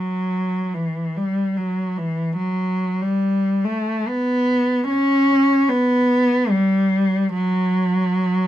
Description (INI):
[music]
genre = classical, free, expressive piece for unaccompanied cello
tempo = 72 BPM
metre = 3/4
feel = rubato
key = unclear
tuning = A4 = 440 Hz
[part]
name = rich cello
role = solo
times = 0.0-8.5 s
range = E3 to C#4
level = -17 LUFS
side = equal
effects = none
[sound]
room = light reverb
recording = none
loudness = -17 LUFS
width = side -12 dB against mid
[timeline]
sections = 0.0-8.5 A section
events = none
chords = none